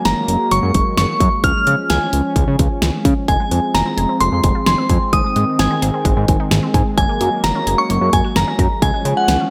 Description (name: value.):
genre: synth-pop.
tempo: 130 BPM.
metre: 4/4.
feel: straight.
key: Db major.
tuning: A4 = 440 Hz.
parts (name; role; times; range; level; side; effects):
glassy synth bell; melody; 0.0-9.5 s; Gb5 to F6; -21 LUFS; equal; chorus, tremolo, slapback echo.
warm analog pad; sustained chords; 0.0-9.5 s; Eb3 to Db4; -25 LUFS; equal; chorus.
fat analog bass; bass; 0.1-9.4 s; F1 to Db3; -20 LUFS; equal; none.
pop drum kit; drums; 0.1-9.4 s; hi-hat, kick drum, snare drum; -20 LUFS; equal; gated reverb.
resonant blip pluck; arpeggios; 3.3-9.5 s; Ab3 to Ab5; -29 LUFS; equal; phaser, slapback echo.
room: light reverb, digital ambience.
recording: none.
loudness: -16 LUFS.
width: mono.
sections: 0.0-9.5 A section.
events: none.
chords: 0.0 Gbadd9; 1.4 Db; 3.3 Fm; 5.1 Ab; 7.0 Gbadd9; 8.8 Db.